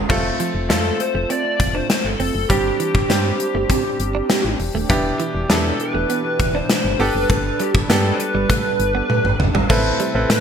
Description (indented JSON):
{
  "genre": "1980s-style pop",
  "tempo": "100 BPM",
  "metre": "4/4",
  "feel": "straight",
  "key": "unclear",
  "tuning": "A4 = 439 Hz",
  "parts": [
    { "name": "bright grand piano", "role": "accompaniment", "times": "0.0-10.4 s", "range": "G3 to B4", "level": "-24 LUFS", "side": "right 1 dB", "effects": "none" },
    { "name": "direct-recorded clean electric guitar", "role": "riff", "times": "0.0-10.4 s", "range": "E3 to D4", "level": "-27 LUFS", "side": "right 6 dB", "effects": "lush chorus" },
    { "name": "solid FM bass", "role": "bass", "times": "0.0-10.4 s", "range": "Eb1 to A2", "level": "-23 LUFS", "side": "equal", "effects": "none" },
    { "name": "brassy analog pad", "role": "sustained chords", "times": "0.1-10.4 s", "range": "B2 to B4", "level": "-29 LUFS", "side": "equal", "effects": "chorus, tremolo" },
    { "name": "gated 80s drum kit", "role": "drums", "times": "0.1-10.4 s", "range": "crash cymbal, hi-hat, kick drum, snare drum, tambourine, toms", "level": "-20 LUFS", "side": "left 1 dB", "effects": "gated reverb" },
    { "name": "lead guitar through a small cranked amp", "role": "melody", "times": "0.7-10.4 s", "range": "G4 to D5", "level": "-23 LUFS", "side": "equal", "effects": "overdrive, analog chorus, digital delay" }
  ],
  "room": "light reverb, small room ambience",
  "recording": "bright 1980s-style digital production",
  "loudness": "-16 LUFS",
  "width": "side -8 dB against mid",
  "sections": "0.1-9.7 A section",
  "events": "drum fill 9.1-9.7",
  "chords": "0.1 F; 2.5 Gsus4; 4.9 Em7; 7.0 Gadd9; 9.7 Amadd9"
}